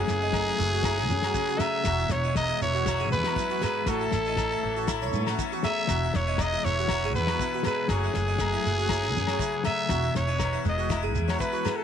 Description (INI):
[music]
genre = highlife guitar band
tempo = 119 BPM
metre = 4/4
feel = straight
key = E major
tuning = A4 = 443 Hz
[part]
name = growling trumpet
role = melody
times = 0.0-11.8 s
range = G#4 to E5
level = -28 LUFS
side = right 1 dB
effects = none
[part]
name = electric guitar at the edge of break-up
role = accompaniment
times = 0.0-11.8 s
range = E2 to F#4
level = -34 LUFS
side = left 13 dB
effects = harmonic tremolo
[part]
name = overdriven combo organ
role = sustained chords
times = 0.0-11.8 s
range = E4 to A5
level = -38 LUFS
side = left 13 dB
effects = none
[part]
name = harpsichord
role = arpeggios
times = 0.0-11.8 s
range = C#4 to C#5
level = -34 LUFS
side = right 12 dB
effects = slapback echo
[part]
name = upright bass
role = bass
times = 0.0-11.4 s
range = E1 to A2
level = -30 LUFS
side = equal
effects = none
[part]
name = damped 70s drum kit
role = drums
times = 0.1-11.8 s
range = kick drum, snare drum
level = -32 LUFS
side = left 4 dB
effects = none
[part]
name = shekere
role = percussion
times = 0.1-11.8 s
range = none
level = -34 LUFS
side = right 5 dB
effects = none
[part]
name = agogo bells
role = percussion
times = 0.3-11.8 s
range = none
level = -37 LUFS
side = left 9 dB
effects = none
[sound]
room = small room ambience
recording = 1960s-style stereo with parts hard left and right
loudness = -24 LUFS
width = side -8 dB against mid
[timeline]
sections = 0.0-11.8 A section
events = none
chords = 0.0 F#madd9; 1.9 Eadd9; 3.9 A; 5.9 Eadd9; 7.9 F#madd9; 9.9 Eadd9